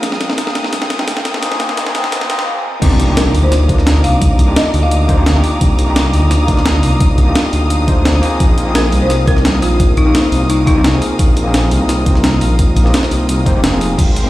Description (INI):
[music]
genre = liquid drum and bass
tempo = 172 BPM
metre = 4/4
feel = straight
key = unclear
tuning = A4 = 440 Hz
[part]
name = overdriven tine electric piano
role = accompaniment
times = 0.0-14.3 s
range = Bb3 to C5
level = -19 LUFS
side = equal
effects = none
[part]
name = warm symphonic string section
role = sustained chords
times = 0.0-14.3 s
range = Bb4 to Eb6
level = -24 LUFS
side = left 1 dB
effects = sidechain pumping
[part]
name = dark detuned saw bass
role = bass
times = 0.0-14.3 s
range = F1 to D2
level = -14 LUFS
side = equal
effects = tube saturation
[part]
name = breakbeat sampler-style drum kit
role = drums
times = 0.0-14.2 s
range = crash cymbal, hi-hat, snare drum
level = -18 LUFS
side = equal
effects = none
[part]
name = riser and impact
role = sound effects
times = 0.0-4.2 s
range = none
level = -24 LUFS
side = equal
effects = none
[part]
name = electronic kick drum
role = drums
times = 2.8-14.1 s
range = none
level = -13 LUFS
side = equal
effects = none
[part]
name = folk marimba with medium hard mallets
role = melody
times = 3.2-5.2, 8.8-10.9 s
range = Eb4 to F5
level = -19 LUFS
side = left 2 dB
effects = dub echo
[sound]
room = moderate recital hall reverb, RT60 1.6 s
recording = played on a big sound system in a bare room, stone room reverb, high-pass filter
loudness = -11 LUFS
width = side -16 dB against mid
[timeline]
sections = 0.0-2.8 A section; 2.8-14.3 B section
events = build-up 0.0-2.8; drum fill 0.0-2.5; riser 0.0-2.5; break 2.5-2.8; drop 2.8-14.3; impact 2.8-4.2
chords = 0.0 Bb7sus4; 2.8 Cm11; 8.4 Bb7sus4